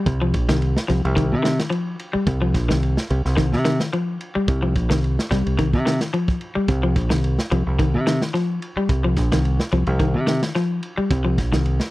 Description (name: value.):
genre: afrobeat.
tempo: 109 BPM.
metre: 4/4.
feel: swing 54% on 16ths.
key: C minor.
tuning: A4 = 440 Hz.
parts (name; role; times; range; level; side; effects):
electric guitar at the edge of break-up; arpeggios; 0.0-11.8 s; Eb3 to G3; -23 LUFS; left 2 dB; spring reverb.
fingered electric bass; bass; 0.1-11.8 s; Bb1 to C3; -20 LUFS; equal; none.
crunchy breakbeat drum kit; drums; 0.1-11.9 s; kick drum, ride cymbal, snare drum; -25 LUFS; right 1 dB; none.
room: little or no reverb.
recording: dry, close 1970s-style studio recording.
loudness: -18 LUFS.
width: side -18 dB against mid.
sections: 0.0-11.9 A section.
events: none.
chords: 0.0 Cm.